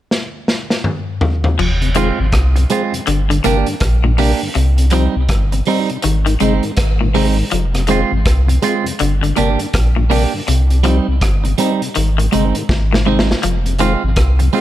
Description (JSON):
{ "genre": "roots reggae", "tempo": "81 BPM", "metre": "4/4", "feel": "swing 61% on 16ths", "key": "F dorian", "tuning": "A4 = 440 Hz", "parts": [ { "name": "vintage drum kit", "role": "drums", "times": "0.1-14.6 s", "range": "crash cymbal, hi-hat, kick drum, rim click, snare drum, toms", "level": "-19 LUFS", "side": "equal", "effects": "none" }, { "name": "clean electric guitar", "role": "arpeggios", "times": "1.6-13.9 s", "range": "Bb2 to F3", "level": "-22 LUFS", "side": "left 7 dB", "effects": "none" }, { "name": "warm sub bass", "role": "bass", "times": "1.6-14.5 s", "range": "F1 to C2", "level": "-15 LUFS", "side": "equal", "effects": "none" }, { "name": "mellow tonewheel organ", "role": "accompaniment", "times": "1.8-14.6 s", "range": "F2 to F4", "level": "-23 LUFS", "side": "left 2 dB", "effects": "overdrive, chorus vibrato, slow rotary speaker" }, { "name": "clean electric guitar", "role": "accompaniment", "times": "2.0-14.6 s", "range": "G3 to G4", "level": "-19 LUFS", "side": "right 6 dB", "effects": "tape echo" } ], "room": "little or no reverb", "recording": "none", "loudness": "-13 LUFS", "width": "side -13 dB against mid", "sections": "0.0-1.6 A section; 1.6-14.6 B section", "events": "drum fill 0.1-1.6, 12.7-13.4", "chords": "0.0 N.C.; 1.6 Fm; 3.1 Gm; 4.6 Cm; 6.0 Ab; 7.5 Fm; 9.0 Gm; 10.5 Cm; 12.0 Ab; 13.4 Fm" }